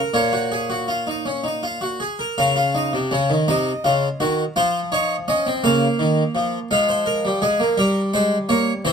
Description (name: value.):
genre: classical, baroque-style 3-part fugue for harpsichord.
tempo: 55 BPM (dotted quarters).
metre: 6/8.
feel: uneven beats.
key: Bb minor.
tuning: A4 = 438 Hz.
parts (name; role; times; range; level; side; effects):
harpsichord; solo; 0.0-8.9 s; Bb2 to F5; -18 LUFS; equal; none.
room: light reverb.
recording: close, detailed microphones.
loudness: -18 LUFS.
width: side -6 dB against mid.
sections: 0.0-2.4 A section; 2.4-8.9 B section.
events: none.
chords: 0.1 Bbm; 2.4 Bbm/Db; 3.5 Cdim; 4.6 F5; 5.6 Bbm/Db; 6.7 Fm; 7.8 Gdim.